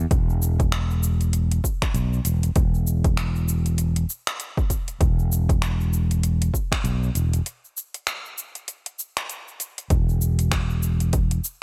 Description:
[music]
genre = organic downtempo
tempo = 98 BPM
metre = 4/4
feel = swing 59% on 16ths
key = unclear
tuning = A4 = 440 Hz
[part]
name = fretless electric bass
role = bass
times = 0.0-11.4 s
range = E1 to B1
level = -24 LUFS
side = equal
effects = none
[part]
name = afro-pop drum kit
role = drums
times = 0.1-11.6 s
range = finger snaps, hi-hat, shaker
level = -31 LUFS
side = equal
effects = overdrive
[part]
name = electronic kick drum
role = drums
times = 0.1-11.3 s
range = none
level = -25 LUFS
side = equal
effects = overdrive
[sound]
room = digital ambience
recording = none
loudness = -23 LUFS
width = mono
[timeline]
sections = 0.0-9.9 A section; 9.9-11.6 B section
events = break 7.5-9.9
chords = none

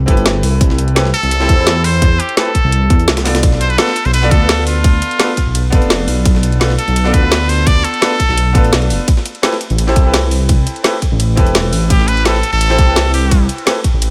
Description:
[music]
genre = liquid drum and bass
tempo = 170 BPM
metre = 4/4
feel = straight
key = A minor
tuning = A4 = 444 Hz
[part]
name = dark detuned saw bass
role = bass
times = 0.0-14.1 s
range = E1 to E2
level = -17 LUFS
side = equal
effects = none
[part]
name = bright concert grand piano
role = accompaniment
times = 0.1-13.8 s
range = B3 to D5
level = -22 LUFS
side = equal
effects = digital delay
[part]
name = breakbeat sampler-style drum kit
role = drums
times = 0.1-14.1 s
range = hi-hat, snare drum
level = -25 LUFS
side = equal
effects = overdrive, high-pass filter on snare, high-pass filter on hats, high-pass filter on room
[part]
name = drum and bass drum kit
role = drums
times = 0.1-14.1 s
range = hi-hat, ride cymbal, snare drum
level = -21 LUFS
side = equal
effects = none
[part]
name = electronic kick drum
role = drums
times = 0.1-13.9 s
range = none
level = -14 LUFS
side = equal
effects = none
[part]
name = trumpet with straight mute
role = melody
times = 1.1-8.9, 11.9-13.5 s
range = F4 to D5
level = -20 LUFS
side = equal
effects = tape echo
[sound]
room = little or no reverb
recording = none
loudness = -13 LUFS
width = mono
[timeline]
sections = 0.0-14.1 A section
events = none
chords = 0.0 Am9; 3.4 Bm7b5; 9.1 Am9

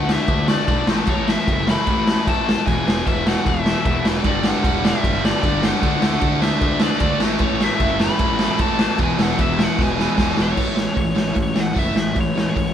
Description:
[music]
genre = punk rock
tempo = 152 BPM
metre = 4/4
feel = straight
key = unclear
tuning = A4 = 440 Hz
[part]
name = biting lead guitar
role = melody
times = 0.0-12.7 s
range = C#5 to B5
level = -25 LUFS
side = left 2 dB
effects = overdrive
[part]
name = sludgy distorted guitar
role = riff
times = 0.0-12.7 s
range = E2 to D4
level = -25 LUFS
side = left 9 dB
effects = overdrive
[part]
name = tight distorted guitar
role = riff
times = 0.0-10.6 s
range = E2 to D4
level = -26 LUFS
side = right 1 dB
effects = distortion
[part]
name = fuzz picked electric bass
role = bass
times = 0.0-12.7 s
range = E1 to D2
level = -26 LUFS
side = equal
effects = overdrive
[part]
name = raw garage drum kit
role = drums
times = 0.1-12.7 s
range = crash cymbal, hi-hat, kick drum, snare drum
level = -20 LUFS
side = equal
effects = none
[part]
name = biting overdriven guitar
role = riff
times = 4.2-12.7 s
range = E2 to D4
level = -26 LUFS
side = right 8 dB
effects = none
[sound]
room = light reverb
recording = band playing live in one room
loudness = -16 LUFS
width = side -9 dB against mid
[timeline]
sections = 0.0-10.6 A section; 10.6-12.7 B section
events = drum fill 9.8-10.6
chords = 0.0 D5; 0.9 A5; 2.7 E5; 4.3 G5; 5.8 D; 7.2 A5; 9.0 E; 10.6 A

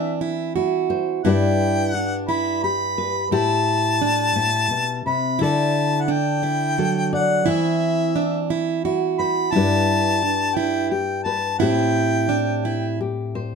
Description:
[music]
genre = acoustic folk duo or small band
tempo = 58 BPM (dotted quarters)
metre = 6/8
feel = straight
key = G major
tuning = A4 = 440 Hz
[part]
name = warm harmonica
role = melody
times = 0.0-12.9 s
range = E5 to B5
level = -22 LUFS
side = left 3 dB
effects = none
[part]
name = nylon-string guitar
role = accompaniment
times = 0.0-13.6 s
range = G2 to D5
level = -23 LUFS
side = left 4 dB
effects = none
[part]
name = picked plugged-in steel-string acoustic guitar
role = arpeggios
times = 0.0-13.0 s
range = F#3 to F#4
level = -23 LUFS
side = right 10 dB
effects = none
[sound]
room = moderate studio reverb, RT60 0.8 s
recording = dark, warm production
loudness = -18 LUFS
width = side -5 dB against mid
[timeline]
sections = 0.0-13.6 A section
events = none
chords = 0.0 C/E; 1.2 G; 3.3 Am7; 5.4 Dsus2; 7.5 C/E; 9.5 G; 11.6 Am7

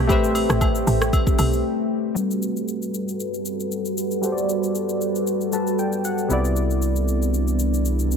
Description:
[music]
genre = amapiano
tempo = 116 BPM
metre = 4/4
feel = swing 55% on 16ths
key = G major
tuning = A4 = 440 Hz
[part]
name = warm analog keys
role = accompaniment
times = 0.0-8.2 s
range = C3 to A5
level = -26 LUFS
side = left 2 dB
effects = chorus, low-pass filter
[part]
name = deep dark ambient pad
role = sustained chords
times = 0.0-8.2 s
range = C3 to B4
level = -24 LUFS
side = equal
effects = chorus, built-in reverb, low-pass filter
[part]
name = woody log drum bass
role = bass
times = 0.0-1.6 s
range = A1 to B1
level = -22 LUFS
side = equal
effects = none
[part]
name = afro-pop drum kit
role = drums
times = 0.1-8.2 s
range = hi-hat, kick drum, rim click, shaker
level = -26 LUFS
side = equal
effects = none
[part]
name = agogo bells and woodblock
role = percussion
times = 0.1-1.5 s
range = none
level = -31 LUFS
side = equal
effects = none
[part]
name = saturated sub bass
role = bass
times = 6.3-8.2 s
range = C2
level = -21 LUFS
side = equal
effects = none
[sound]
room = light reverb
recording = none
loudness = -20 LUFS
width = side -6 dB against mid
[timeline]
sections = 0.0-2.2 A section; 2.2-8.2 B section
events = drop 0.0-2.2; break 1.6-2.2; filter sweep 2.2-8.2; synth keys fill 5.3-6.3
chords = 0.0 Am11; 2.2 Gmaj9; 6.3 Cmaj9

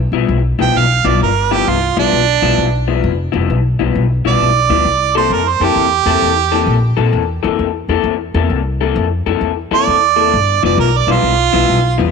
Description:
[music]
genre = electric blues shuffle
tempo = 132 BPM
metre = 4/4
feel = swing 65% on 8ths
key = G mixolydian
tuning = A4 = 440 Hz
[part]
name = upright bass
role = bass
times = 0.0-12.1 s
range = F1 to F2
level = -17 LUFS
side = left 1 dB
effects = none
[part]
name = electric guitar through a small old amp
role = riff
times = 0.1-12.1 s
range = G2 to A4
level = -17 LUFS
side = left 16 dB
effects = lush chorus
[part]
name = clear harmonica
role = melody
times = 0.6-7.0, 9.8-12.1 s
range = D4 to G5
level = -14 LUFS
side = right 12 dB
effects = overdrive, slapback echo
[sound]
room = light reverb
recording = 1960s-style stereo with parts hard left and right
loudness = -12 LUFS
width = side -5 dB against mid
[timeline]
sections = 0.0-12.1 A section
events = none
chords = 0.0 G6; 4.9 C13; 10.3 G6

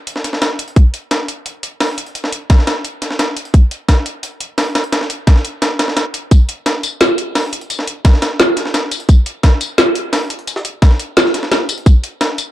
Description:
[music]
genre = drum and bass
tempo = 173 BPM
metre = 4/4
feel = straight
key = none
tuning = none
[part]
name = breakbeat sampler-style drum kit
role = drums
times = 0.1-12.5 s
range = hi-hat, snare drum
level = -18 LUFS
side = equal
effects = high-pass filter on hats, high-pass filter on snare
[part]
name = drum and bass drum kit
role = drums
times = 0.1-12.5 s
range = hi-hat, snare drum, tambourine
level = -16 LUFS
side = equal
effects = none
[part]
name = electronic kick drum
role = drums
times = 0.8-11.9 s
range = none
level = -8 LUFS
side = equal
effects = none
[sound]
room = light reverb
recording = dark, warm production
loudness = -12 LUFS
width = side -14 dB against mid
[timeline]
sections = 0.0-12.5 A section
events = none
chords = none

